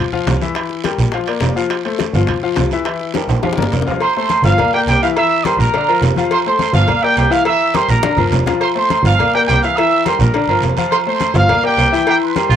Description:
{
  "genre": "latin, salsa",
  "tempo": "208 BPM",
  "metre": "4/4",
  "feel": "straight",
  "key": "F major",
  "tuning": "A4 = 440 Hz",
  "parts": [
    { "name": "bright baby grand piano", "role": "accompaniment", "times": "0.0-12.6 s", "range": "D3 to F5", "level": "-19 LUFS", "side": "left 7 dB", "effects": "cassette tape" },
    { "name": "congas", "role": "percussion", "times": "0.1-12.6 s", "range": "none", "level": "-24 LUFS", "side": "left 5 dB", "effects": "none" },
    { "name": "dark double bass", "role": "bass", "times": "0.3-12.6 s", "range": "F1 to C2", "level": "-16 LUFS", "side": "right 1 dB", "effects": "none" },
    { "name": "bongos and cowbell", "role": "percussion", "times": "0.3-12.5 s", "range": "none", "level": "-25 LUFS", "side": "left 8 dB", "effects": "none" },
    { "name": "guiro", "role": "percussion", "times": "0.3-12.6 s", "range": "none", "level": "-30 LUFS", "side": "right 11 dB", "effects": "none" },
    { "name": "timbales and agogo bells", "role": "percussion", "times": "0.3-12.5 s", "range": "none", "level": "-21 LUFS", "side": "right 11 dB", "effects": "none" },
    { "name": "clear trumpet section", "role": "melody", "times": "4.0-12.6 s", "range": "G4 to E6", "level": "-16 LUFS", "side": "right 2 dB", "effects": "cassette tape" },
    { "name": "raspy baritone saxophone", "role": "second line", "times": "12.5-12.6 s", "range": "F4", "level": "-15 LUFS", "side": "right 10 dB", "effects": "cassette tape" }
  ],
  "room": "moderate small room reverb, RT60 0.6 s",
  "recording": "home recording on cassette",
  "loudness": "-12 LUFS",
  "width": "side -9 dB against mid",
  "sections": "0.0-4.0 A section; 4.0-12.6 B section",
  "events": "drum fill 3.1-4.0, 8.0-8.6",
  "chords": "0.0 Cadd11; 0.6 C7 (rootless); 1.1 Bb; 1.7 F; 2.3 Cadd11; 2.9 C7 (rootless); 3.4 Bb; 4.0 F; 4.6 Gm7; 5.2 C7; 5.7 Bb; 6.3 F; 6.9 Gm7; 7.5 C7; 8.0 Bb; 8.6 F; 9.2 Gm7; 9.8 C7; 10.3 Bb; 10.9 F; 11.5 Gm7",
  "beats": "0.27 | 0.56 0.84 1.13 1.42 | 1.71 1.99 2.28 2.57 | 2.86 3.15 3.43 3.72 | 4.01 4.30 4.58 4.87 | 5.16 5.45 5.73 6.02 | 6.31 6.59 6.88 7.17 | 7.46 7.74 8.03 8.32 | 8.61 8.89 9.18 9.47 | 9.76 10.05 10.34 10.62 | 10.91 11.20 11.49 11.78 | 12.07 12.36"
}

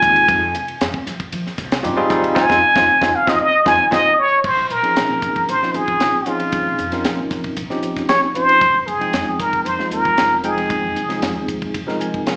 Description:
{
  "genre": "electric jazz fusion",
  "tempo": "115 BPM",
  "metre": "4/4",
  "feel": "straight",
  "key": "F minor",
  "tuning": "A4 = 440 Hz",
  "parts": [
    { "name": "trumpet with plunger mute", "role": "melody", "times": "0.0-11.5 s", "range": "F4 to Ab5", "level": "-18 LUFS", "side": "equal", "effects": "slapback echo" },
    { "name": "bell-like tine electric piano", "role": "accompaniment", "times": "0.0-12.4 s", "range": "F3 to Ab5", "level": "-24 LUFS", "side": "equal", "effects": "slapback echo" },
    { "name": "upright bass", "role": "bass", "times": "0.0-12.4 s", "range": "F1 to F3", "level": "-34 LUFS", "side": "equal", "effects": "none" },
    { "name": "tight funk drum kit", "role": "drums", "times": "0.0-12.4 s", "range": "crash cymbal, hi-hat, kick drum, ride cymbal, snare drum", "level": "-27 LUFS", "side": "equal", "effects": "none" }
  ],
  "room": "light reverb, studio reverb",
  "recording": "live gig heard through the venue's PA, club reverb, small speaker sound",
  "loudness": "-17 LUFS",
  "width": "mono",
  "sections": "0.0-4.4 A section; 4.4-12.4 B section",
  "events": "muted trumpet solo 0.0-4.4; band accent 2.4-4.4; tine electric piano fill 11.7-12.4",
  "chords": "0.0 Fm9; 4.4 Bbm11; 8.6 Fm9",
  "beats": "| 0.28 0.80 1.32 1.84 | 2.36 2.88 3.40 3.92 | 4.44 4.96 5.48 6.00 | 6.53 7.05 7.57 8.09 | 8.61 9.13 9.66 10.18 | 10.70 11.22 11.74 12.27"
}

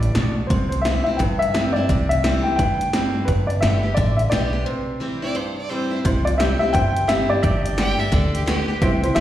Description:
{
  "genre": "honky-tonk and classic country",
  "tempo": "173 BPM",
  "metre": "4/4",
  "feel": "swing 63% on 8ths",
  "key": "C major",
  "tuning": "A4 = 440 Hz",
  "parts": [
    { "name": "warm upright piano", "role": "melody", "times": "0.0-9.2 s", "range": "E4 to G5", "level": "-23 LUFS", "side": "left 2 dB", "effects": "plate reverb, slapback echo" },
    { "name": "picked steel-string acoustic guitar", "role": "accompaniment", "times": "0.0-9.2 s", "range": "G2 to G4", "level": "-25 LUFS", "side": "equal", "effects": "plate reverb, slapback echo" },
    { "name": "upright bass", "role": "bass", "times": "0.0-9.2 s", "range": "G1 to G2", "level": "-22 LUFS", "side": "equal", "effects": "none" },
    { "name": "punchy analog drum machine", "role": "drums", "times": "0.0-9.2 s", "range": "hi-hat, kick drum, snare drum", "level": "-24 LUFS", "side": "right 1 dB", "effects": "overdrive" },
    { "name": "bright fiddle", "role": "second line", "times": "5.2-8.7 s", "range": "G4 to G5", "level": "-28 LUFS", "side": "right 3 dB", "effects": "plate reverb, slapback echo" },
    { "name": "pedal steel guitar", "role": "sustained chords", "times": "6.4-9.2 s", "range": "D5 to G5", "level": "-31 LUFS", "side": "equal", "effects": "lush chorus, plate reverb" }
  ],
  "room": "moderate club reverb, RT60 0.8 s",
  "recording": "live gig heard through the venue's PA, recital hall reverb",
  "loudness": "-18 LUFS",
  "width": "side -12 dB against mid",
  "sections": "0.0-6.1 A section; 6.1-9.2 A section",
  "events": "break 4.7-6.1",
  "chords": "0.0 G (rootless); 0.5 C; 3.3 G; 4.7 C; 7.4 G",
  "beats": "0.16 | 0.51 0.85 1.20 1.55 | 1.89 2.24 2.59 2.94 | 3.28 3.63 3.98 4.32 | 4.67 5.01 5.36 5.71 | 6.05 6.40 6.75 7.09 | 7.44 7.78 8.13 8.47 | 8.82 9.16"
}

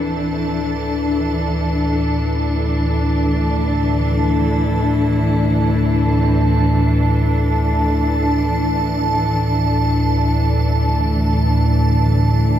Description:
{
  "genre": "dark ambient drone",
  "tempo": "free time",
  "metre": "none",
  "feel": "none",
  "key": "unclear",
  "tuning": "A4 = 438 Hz",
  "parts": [
    { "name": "bright horsehead fiddle", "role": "melody", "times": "0.0-8.6 s", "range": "C4 to E4", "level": "-34 LUFS", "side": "right 1 dB", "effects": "tape echo" },
    { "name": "rich studio cello section", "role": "sustained chords", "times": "0.0-12.6 s", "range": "E3 to A4", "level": "-20 LUFS", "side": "left 1 dB", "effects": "none" },
    { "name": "analog drone", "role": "drone", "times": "0.0-12.6 s", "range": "D2 to A2", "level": "-17 LUFS", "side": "equal", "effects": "wide subtle chorus" },
    { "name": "icy glass pad", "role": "texture", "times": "0.0-12.6 s", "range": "A5", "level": "-25 LUFS", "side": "right 3 dB", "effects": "chorus, built-in reverb" }
  ],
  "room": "moderate huge ambient reverb, RT60 8.7 s",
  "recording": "dark, warm production",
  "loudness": "-15 LUFS",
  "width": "side -11 dB against mid",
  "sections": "0.0-12.6 A section",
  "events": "fade-in on horsehead fiddle 0.0-12.6; filter sweep on synth drone 0.0-12.6",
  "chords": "0.0 Dsus2",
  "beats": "free time"
}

